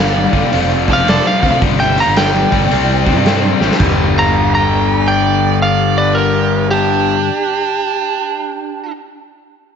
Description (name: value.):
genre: blues rock power trio and southern rock.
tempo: 110 BPM.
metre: 4/4.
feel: swing 65% on 8ths.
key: G mixolydian.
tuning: A4 = 440 Hz.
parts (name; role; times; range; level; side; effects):
lightly driven lead guitar; melody; 0.0-8.9 s; G4 to Bb5; -17 LUFS; right 1 dB; slapback echo.
nasal lead guitar with a parked wah; second line; 0.0-8.9 s; D4 to G5; -21 LUFS; right 11 dB; overdrive.
overdriven tonewheel organ; sustained chords; 0.0-7.1 s; B3 to D5; -27 LUFS; right 8 dB; slow rotary speaker, chorus vibrato.
cranked stack guitar; riff; 0.0-7.3 s; F2 to C4; -16 LUFS; left 10 dB; overdrive.
fuzz fingered electric bass; bass; 0.0-7.1 s; F1 to G2; -18 LUFS; right 1 dB; overdrive.
raw garage drum kit; drums; 0.3-4.0 s; crash cymbal, hi-hat, kick drum, snare drum, toms; -17 LUFS; right 1 dB; none.
room: light reverb, small room reverb.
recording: 1960s-style stereo with parts hard left and right, nothing above 7.6 kHz.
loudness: -11 LUFS.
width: side -7 dB against mid.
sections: 0.0-3.8 A section; 3.8-8.2 B section.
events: drum fill 3.5.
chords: 0.0 G; 0.5 F; 1.6 G; 2.7 C; 3.8 G.